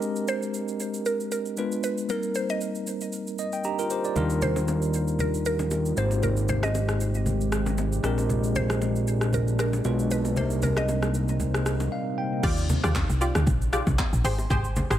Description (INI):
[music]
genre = amapiano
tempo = 116 BPM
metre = 4/4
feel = swing 55% on 16ths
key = Eb major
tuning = A4 = 440 Hz
[part]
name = tine electric piano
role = accompaniment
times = 0.0-12.5 s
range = G3 to Bb5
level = -29 LUFS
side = equal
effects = medium stereo tremolo
[part]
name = deep house drum kit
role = drums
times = 0.0-15.0 s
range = crash cymbal, handclaps, hi-hat, kick drum, rim click, shaker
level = -31 LUFS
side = equal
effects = none
[part]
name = mallet-like synth pluck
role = melody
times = 0.3-11.3 s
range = Bb4 to Eb5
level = -32 LUFS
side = equal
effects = chorus, phaser, digital delay
[part]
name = deep dark ambient pad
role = sustained chords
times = 5.4-12.4 s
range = C3 to D5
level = -33 LUFS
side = right 1 dB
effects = chorus, built-in reverb
[part]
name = fat analog bass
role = bass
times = 4.2-11.9 s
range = Ab1 to Eb2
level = -26 LUFS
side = equal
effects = none
[part]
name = congas and bongos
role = percussion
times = 4.2-14.9 s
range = none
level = -32 LUFS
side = equal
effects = none
[part]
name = punchy chord stab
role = stabs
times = 12.4-15.0 s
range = F4 to D5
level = -30 LUFS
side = equal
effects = chorus, digital delay
[part]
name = woody log drum bass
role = bass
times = 12.4-15.0 s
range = Ab1 to Eb2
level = -25 LUFS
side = equal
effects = none
[sound]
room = digital ambience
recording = none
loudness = -23 LUFS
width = side -12 dB against mid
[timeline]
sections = 0.0-12.4 A section; 12.4-15.0 B section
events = tine electric piano fill 3.1-4.2, 11.7-12.4; break 11.9-12.4; drop 12.4-15.0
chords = 0.0 Bb13; 1.6 Bdim7; 2.1 Cm7; 4.2 Ebmaj9; 6.0 Abmaj7; 8.0 Bb13; 9.8 Bdim7; 10.4 Cm7; 12.4 Ebmaj9; 14.2 Abmaj7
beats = | 0.02 0.54 1.06 1.57 | 2.09 2.61 3.13 3.64 | 4.16 4.68 5.20 5.71 | 6.23 6.75 7.26 7.78 | 8.30 8.82 9.33 9.85 | 10.37 10.88 11.40 11.92 | 12.44 12.95 13.47 13.99 | 14.51